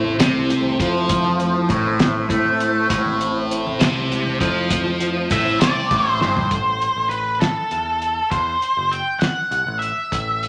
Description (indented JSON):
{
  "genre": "psychedelic rock",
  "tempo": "67 BPM (dotted quarters)",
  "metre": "6/8",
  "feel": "straight",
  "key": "A minor",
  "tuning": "A4 = 440 Hz",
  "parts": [
    { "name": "soft string machine", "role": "sustained chords", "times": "0.0-6.5 s", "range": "A3 to C5", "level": "-29 LUFS", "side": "equal", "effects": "ensemble chorus" },
    { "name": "overdriven electric guitar", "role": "riff", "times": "0.0-6.5 s", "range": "G2 to A3", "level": "-22 LUFS", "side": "equal", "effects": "phaser" },
    { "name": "picked electric bass", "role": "bass", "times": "0.0-10.5 s", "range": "F#1 to A2", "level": "-30 LUFS", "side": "equal", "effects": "none" },
    { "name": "congas", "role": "percussion", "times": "0.0-6.5 s", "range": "none", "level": "-36 LUFS", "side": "equal", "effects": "none" },
    { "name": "cloth-damped thuddy drum kit", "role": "drums", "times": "0.2-10.5 s", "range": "hi-hat, kick drum, snare drum, toms", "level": "-24 LUFS", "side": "equal", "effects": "none" },
    { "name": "octave-fuzz lead guitar", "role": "melody", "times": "5.3-10.5 s", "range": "A4 to G5", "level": "-22 LUFS", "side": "equal", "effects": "distortion" }
  ],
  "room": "wet large studio reverb, RT60 1.1 s",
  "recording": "none",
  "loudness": "-20 LUFS",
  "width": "mono",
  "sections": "0.0-6.5 A section; 6.5-10.5 B section",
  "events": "drum fill 6.1-6.5",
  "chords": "0.0 Am"
}